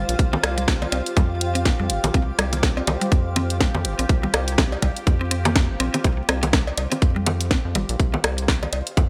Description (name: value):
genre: minimal techno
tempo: 123 BPM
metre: 4/4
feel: swing 58% on 16ths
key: unclear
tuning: A4 = 440 Hz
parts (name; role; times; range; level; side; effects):
- rubbery square bass; bass; 0.0-9.1 s; G1 to F2; -28 LUFS; equal; sidechain pumping
- bubbling stepped-filter texture; texture; 0.1-9.1 s; G4; -39 LUFS; equal; chorus, built-in reverb, sidechain pumping
- granular cloud pad; texture; 0.0-8.0 s; F4 to F5; -34 LUFS; equal; built-in reverb, sidechain pumping
- garage drum kit; drums; 0.1-9.1 s; hi-hat, snare drum; -27 LUFS; equal; studio reverb
- electronic kick drum; drums; 0.2-9.1 s; none; -22 LUFS; equal; studio reverb
- mallet-like synth pluck; riff; 0.3-7.8 s; G3 to C4; -32 LUFS; equal; chorus, sidechain pumping, delay
- electronic bongos, rim click and cowbell; percussion; 0.3-9.1 s; none; -28 LUFS; equal; studio reverb, digital delay
room: light reverb, digital ambience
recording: bright 1980s-style digital production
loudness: -21 LUFS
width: mono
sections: 0.0-9.1 A section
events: none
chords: 0.0 Csus4